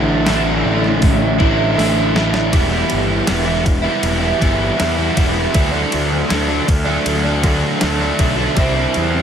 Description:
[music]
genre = rock, shoegaze and dream pop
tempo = 80 BPM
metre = 4/4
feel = straight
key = unclear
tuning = A4 = 440 Hz
[part]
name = biting overdriven guitar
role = riff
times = 0.0-9.2 s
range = A2 to E4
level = -16 LUFS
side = right 1 dB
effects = lush chorus
[part]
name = fuzz picked electric bass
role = bass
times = 0.0-9.2 s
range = E1 to E2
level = -20 LUFS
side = equal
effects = overdrive
[part]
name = crisp 8-bit digital drum machine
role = drums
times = 0.3-9.1 s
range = hi-hat, kick drum, ride cymbal, snare drum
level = -20 LUFS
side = equal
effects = overdrive
[sound]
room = moderate huge ambient reverb, RT60 6.5 s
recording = dreamy mix soaked in reverb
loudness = -14 LUFS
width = side -8 dB against mid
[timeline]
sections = 0.0-2.5 A section; 2.5-9.2 B section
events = drum fill 1.8-2.5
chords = 0.0 Asus4; 2.5 Em; 5.5 D; 8.6 C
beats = 0.27 1.02 1.77 | 2.53 3.28 4.04 4.79 | 5.55 6.30 7.06 7.81 | 8.56

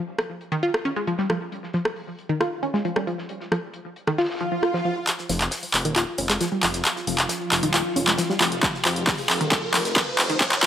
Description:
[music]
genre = driving peak-time techno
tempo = 135 BPM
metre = 4/4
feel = straight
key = unclear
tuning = A4 = 440 Hz
[part]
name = damped 70s drum kit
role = drums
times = 0.2-10.7 s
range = hi-hat, snare drum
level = -35 LUFS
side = left 2 dB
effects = high-pass filter on hats, low-pass filter on hats, studio reverb, high-pass filter on snare, low-pass filter on snare, high-pass filter on room, low-pass filter on room
[part]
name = techno drum kit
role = drums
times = 0.2-10.7 s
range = handclaps, hi-hat, rim click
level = -22 LUFS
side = equal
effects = overdrive, high-pass filter on snare, studio reverb, high-pass filter on hats
[part]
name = wide unison pluck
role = riff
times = 0.5-10.7 s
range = Eb3 to F4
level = -26 LUFS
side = equal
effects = tube saturation, sidechain pumping, tape echo
[part]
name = swell and riser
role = sound effects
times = 4.3-10.7 s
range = none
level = -30 LUFS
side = equal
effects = none
[part]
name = swarming drone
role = drone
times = 6.1-10.7 s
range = F3 to F4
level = -32 LUFS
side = equal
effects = built-in reverb, sidechain pumping
[part]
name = detuned saw bass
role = bass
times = 5.3-10.7 s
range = Eb1 to F1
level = -31 LUFS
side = equal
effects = sidechain pumping
[part]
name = electronic kick drum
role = drums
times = 8.6-10.7 s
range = none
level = -26 LUFS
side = equal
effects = overdrive, studio reverb
[sound]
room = moderate lush hall reverb, RT60 1.9 s, digital ambience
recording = dry, gritty hardware recording, high-pass filter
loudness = -21 LUFS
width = side -10 dB against mid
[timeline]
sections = 0.0-5.1 A section; 5.1-10.7 B section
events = swell 4.3-5.1; build-up 5.1-10.7; drum fill 5.1-10.7; riser 5.1-10.7; filter sweep on synth arpeggio sound 5.1-10.7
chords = 0.0 N.C.; 5.1 Ebsus2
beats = 0.18 0.63 1.07 | 1.52 1.96 2.41 2.85 | 3.29 3.74 4.18 4.63 | 5.07 5.52 5.96 6.41 | 6.85 7.29 7.74 8.18 | 8.63 9.07 9.52 9.96 | 10.41

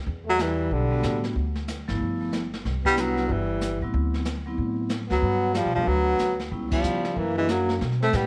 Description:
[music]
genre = jazz, small-group swing and bop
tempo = 186 BPM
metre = 4/4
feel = swing 62% on 8ths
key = G major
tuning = A4 = 437 Hz
[part]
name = upright bass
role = bass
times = 0.1-8.3 s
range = G1 to C#3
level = -30 LUFS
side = equal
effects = none
[part]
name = jazz brush drum kit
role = drums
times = 0.1-8.3 s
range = brushed snare drum, hi-hat, kick drum, ride cymbal, snare drum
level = -35 LUFS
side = equal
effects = none
[part]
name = breathy baritone saxophone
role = melody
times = 0.3-8.3 s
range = D3 to A3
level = -27 LUFS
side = equal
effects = none
[part]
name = breathy trombone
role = second line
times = 0.3-8.3 s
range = G3 to C4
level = -34 LUFS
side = equal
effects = none
[part]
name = vibraphone with medium hard mallets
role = accompaniment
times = 0.9-7.8 s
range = F3 to F#4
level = -34 LUFS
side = equal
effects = none
[sound]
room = moderate echo chamber reverb, RT60 1.4 s, studio reverb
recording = none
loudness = -25 LUFS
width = mono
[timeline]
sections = 0.0-7.8 A section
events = band accent 6.7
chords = 0.1 Em7; 1.4 Dm; 2.0 G13; 2.6 Cmaj7; 3.9 D13; 5.2 Gmaj7; 6.5 C#m7b5; 7.2 F#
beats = | 0.07 0.39 0.71 1.03 | 1.36 1.68 2.00 2.32 | 2.65 2.97 3.29 3.61 | 3.94 4.26 4.58 4.91 | 5.23 5.55 5.87 6.20 | 6.52 6.84 7.17 7.49 | 7.81 8.13

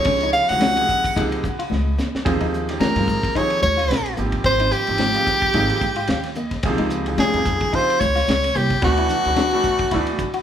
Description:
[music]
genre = electric jazz fusion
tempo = 110 BPM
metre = 4/4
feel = swing 56% on 16ths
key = unclear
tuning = A4 = 442 Hz
[part]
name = edgy soprano saxophone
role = melody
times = 0.0-10.4 s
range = F#4 to Gb5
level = -19 LUFS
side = equal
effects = none
[part]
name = bright concert grand piano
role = accompaniment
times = 0.0-10.3 s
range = B2 to G5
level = -26 LUFS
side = right 2 dB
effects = none
[part]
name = tight funk drum kit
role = drums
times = 0.0-10.4 s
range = hi-hat, kick drum, ride cymbal, snare drum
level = -26 LUFS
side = equal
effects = none
[part]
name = semi-hollow electric guitar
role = stabs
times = 0.1-10.4 s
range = Bb3 to F#4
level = -29 LUFS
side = left 2 dB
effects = none
[part]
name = upright bass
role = bass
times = 0.1-10.4 s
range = Ab1 to Eb3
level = -25 LUFS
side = equal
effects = none
[part]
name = congas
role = percussion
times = 0.1-10.0 s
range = none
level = -29 LUFS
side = left 4 dB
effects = none
[sound]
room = moderate large studio reverb, RT60 1.0 s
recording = band playing live in one room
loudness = -17 LUFS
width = side -9 dB against mid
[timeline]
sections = 0.0-10.4 A section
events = grand piano fill 1.2-2.3, 5.5-6.6; drum fill 1.7-2.3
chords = 0.0 Gbmaj9/Db; 2.3 Eb13sus4; 4.2 Abmaj9; 6.6 Dbmaj9; 8.8 D69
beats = | 0.06 0.61 1.16 1.71 | 2.26 2.81 3.35 3.90 | 4.45 5.00 5.55 6.09 | 6.64 7.19 7.74 8.28 | 8.83 9.38 9.92

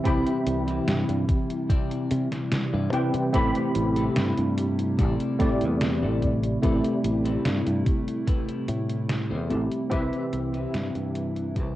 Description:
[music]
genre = vaporwave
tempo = 73 BPM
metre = 4/4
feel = straight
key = unclear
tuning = A4 = 440 Hz
[part]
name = tine electric piano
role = accompaniment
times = 0.0-11.8 s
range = A3 to B5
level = -26 LUFS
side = equal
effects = medium stereo tremolo, ensemble chorus, cassette tape, analog delay
[part]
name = warbly tape-like pad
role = sustained chords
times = 0.0-11.8 s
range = C3 to E4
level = -31 LUFS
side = equal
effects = chorus, built-in reverb, cassette tape
[part]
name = clean electric guitar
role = riff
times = 0.1-11.8 s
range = C4 to D5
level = -38 LUFS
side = left 7 dB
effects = wide subtle chorus, cassette tape, analog delay
[part]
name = fingered electric bass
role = bass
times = 0.1-11.7 s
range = A1 to C3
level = -28 LUFS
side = equal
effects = none
[part]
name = detuned 8-bit digital drum machine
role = drums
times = 0.1-11.7 s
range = hi-hat, snare drum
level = -32 LUFS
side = equal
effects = overdrive, cassette tape
[part]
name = electronic kick drum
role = drums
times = 0.1-11.7 s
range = none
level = -25 LUFS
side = equal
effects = overdrive, cassette tape
[sound]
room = moderate studio reverb, RT60 0.6 s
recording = home recording on cassette, nothing above 10.3 kHz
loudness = -23 LUFS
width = side -14 dB against mid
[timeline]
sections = 0.0-11.8 A section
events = fade-out 7.7-11.8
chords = 0.0 Cmaj7; 3.3 Am9; 9.9 Cmaj7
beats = | 0.05 0.88 1.70 2.52 | 3.34 4.16 4.99 5.81 | 6.63 7.45 8.27 9.10 | 9.92 10.74 11.56

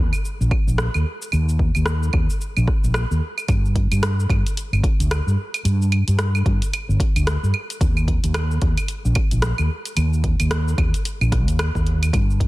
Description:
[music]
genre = organic downtempo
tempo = 111 BPM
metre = 4/4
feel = swing 59% on 16ths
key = unclear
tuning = A4 = 440 Hz
[part]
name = fretless electric bass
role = bass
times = 0.0-12.5 s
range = G1 to G2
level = -19 LUFS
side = equal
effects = ensemble chorus
[part]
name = deep house drum kit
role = drums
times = 0.1-12.5 s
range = claves, hi-hat, rim click, shaker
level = -27 LUFS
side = right 1 dB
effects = soft clipping on snare
[part]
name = electronic kick drum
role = drums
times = 0.5-12.5 s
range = none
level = -21 LUFS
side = equal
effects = none
[sound]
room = digital ambience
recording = dense, heavily limited modern master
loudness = -18 LUFS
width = side -19 dB against mid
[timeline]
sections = 0.0-12.5 A section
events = none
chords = none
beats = 0.24 0.78 | 1.32 1.86 2.40 2.94 | 3.48 4.03 4.57 5.11 | 5.65 6.19 6.73 7.27 | 7.81 8.35 8.89 9.43 | 9.97 10.51 11.05 11.59 | 12.13

